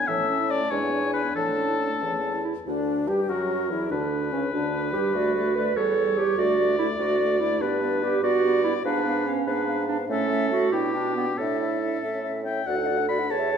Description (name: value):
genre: quick classical-period movement for wind quintet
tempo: 96 BPM (dotted quarters)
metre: 6/8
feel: straight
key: D major from 7.6 s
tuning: A4 = 440 Hz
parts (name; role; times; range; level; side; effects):
- concert flute; melody; 0.0-13.6 s; C#4 to A5; -31 LUFS; left 7 dB; none
- warm oboe; second line; 0.0-13.6 s; G4 to B5; -28 LUFS; left 4 dB; none
- warm French horn; accompaniment; 0.0-13.6 s; C#3 to A4; -32 LUFS; left 1 dB; none
- warm clarinet; accompaniment; 0.0-13.6 s; E3 to C#5; -26 LUFS; right 6 dB; none
- mellow bassoon; bass; 0.1-13.6 s; C#2 to B2; -29 LUFS; right 1 dB; none
room: wet recital hall reverb, RT60 1.5 s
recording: minimal, uncompressed stereo recording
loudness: -22 LUFS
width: side -7 dB against mid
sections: 0.0-2.7 A section; 2.7-12.7 B section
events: none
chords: 0.1 A; 0.7 E7; 1.4 A; 2.7 Dsus4; 3.3 F#7; 3.9 Bm; 5.1 D; 5.8 A7/E; 6.4 D; 7.6 G; 8.8 G#dim7; 10.1 A; 10.7 G/B; 11.4 Asus4; 12.0 A; 12.7 D